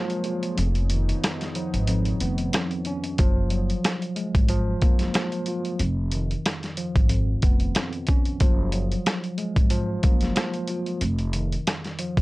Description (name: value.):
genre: hip hop, boom-bap hip-hop.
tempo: 92 BPM.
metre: 4/4.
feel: swing 55% on 16ths.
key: F# major.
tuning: A4 = 445 Hz.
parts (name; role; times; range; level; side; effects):
tine electric piano; accompaniment; 0.0-12.2 s; E#2 to E#4; -28 LUFS; equal; medium stereo tremolo, cassette tape, high-pass filter, low-pass filter.
warm analog pad; sustained chords; 0.0-3.2 s; E#3 to C#5; -36 LUFS; left 1 dB; chorus, high-pass filter, low-pass filter.
boom bap sampler-style drum kit; drums; 0.1-12.2 s; hi-hat, kick drum, rim click, snare drum; -23 LUFS; equal; vintage 12-bit sampler grit.
upright bass; bass; 0.6-12.2 s; E#1 to G#1; -25 LUFS; equal; transformer saturation.
room: little or no reverb.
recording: dry, gritty hardware recording.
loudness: -22 LUFS.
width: side -20 dB against mid.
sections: 0.0-3.2 A section; 3.2-12.2 B section.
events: kick muted 0.6-3.2.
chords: 0.0 F#maj9; 0.6 C#9/E#; 3.2 F#maj9; 5.8 C#9/E#; 8.4 F#maj9; 11.0 C#add9/E# (rootless).